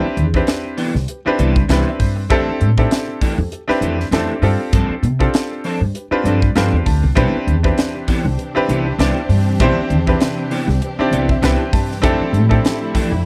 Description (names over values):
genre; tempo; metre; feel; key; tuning
electric jazz fusion; 99 BPM; 4/4; swing 56% on 16ths; C major; A4 = 441 Hz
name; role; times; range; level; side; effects
clear baby grand piano; accompaniment; 0.0-13.2 s; C4 to A5; -22 LUFS; equal; none
clean electric guitar; stabs; 0.0-13.2 s; E3 to A4; -25 LUFS; equal; ensemble chorus
upright bass; bass; 0.0-13.2 s; C2 to C3; -20 LUFS; equal; none
crisp fusion drum kit; drums; 0.2-13.1 s; hi-hat, kick drum, snare drum; -21 LUFS; equal; none
warm symphonic string section; sustained chords; 7.2-13.3 s; C3 to G4; -28 LUFS; equal; none
room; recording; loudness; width
little or no reverb; dry, close 1970s-style studio recording; -17 LUFS; mono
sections
0.0-13.3 A section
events
grand piano fill 1.4-2.3, 6.0-7.2, 10.8-12.0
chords
0.0 Cmaj9; 2.3 Fmaj13; 4.4 G9sus4; 7.2 Cmaj9; 12.0 Fmaj13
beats
0.48 1.08 1.69 | 2.30 2.91 3.52 4.13 | 4.74 5.34 5.95 6.56 | 7.17 7.78 8.39 8.99 | 9.60 10.21 10.82 11.43 | 12.04 12.64 13.25